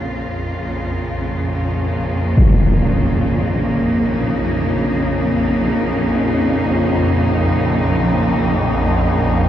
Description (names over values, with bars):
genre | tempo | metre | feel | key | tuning
dark ambient drone | free time | none | none | Bb minor | A4 = 440 Hz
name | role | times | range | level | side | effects
rich studio cello section | sustained chords | 0.0-9.5 s | Db3 to F4 | -19 LUFS | equal | shimmer reverb
swarming drone | drone | 0.0-9.5 s | Bb1 to F2 | -18 LUFS | equal | built-in reverb, phaser
impact | percussion | 2.4-2.6 s | none | -17 LUFS | equal | low-pass filter on sfx
room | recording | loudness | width
wet cathedral reverb, RT60 5.1 s | in a vast, echoing space, cassette tape | -15 LUFS | side -11 dB against mid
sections
0.0-9.5 A section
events
fade-in on synth drone 0.0-9.5; fade-in on cello section 0.0-9.5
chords
0.0 Bbm